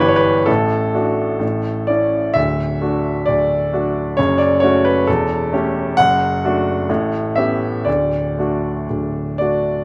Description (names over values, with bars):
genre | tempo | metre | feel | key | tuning
classical, romantic character piece for solo piano | 65 BPM | 2/4 | uneven beats, rubato | D major | A4 = 439 Hz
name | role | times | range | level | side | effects
clear baby grand piano | solo | 0.0-9.8 s | D1 to F#5 | -18 LUFS | equal | none
room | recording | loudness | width
wet large studio reverb, RT60 1.1 s | none | -18 LUFS | mono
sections
0.0-9.8 A section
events
none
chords
0.5 D/A; 1.4 A; 2.4 D; 4.2 F#m; 5.1 A7/E; 6.0 D/F#; 6.9 A9; 7.9 D